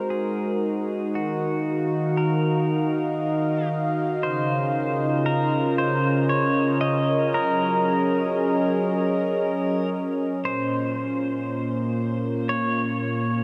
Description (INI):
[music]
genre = ambient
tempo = 58 BPM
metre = 3/4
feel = straight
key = Bb minor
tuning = A4 = 438 Hz
[part]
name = pedal steel guitar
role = melody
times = 0.0-13.4 s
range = Gb4 to Eb5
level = -30 LUFS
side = equal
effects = diffuse ambient delay
[part]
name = warm analog pad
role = sustained chords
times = 0.0-13.4 s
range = Bb2 to F5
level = -25 LUFS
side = equal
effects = chorus
[sound]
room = wet huge ambient reverb, RT60 7.4 s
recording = dark, warm production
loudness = -24 LUFS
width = mono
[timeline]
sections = 0.0-10.4 A section; 10.4-13.4 B section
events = fade-in on pedal steel guitar 0.0-10.4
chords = 0.0 Ab7; 1.1 Ebm; 4.2 Db69; 7.3 Gb69; 10.4 Bbmadd9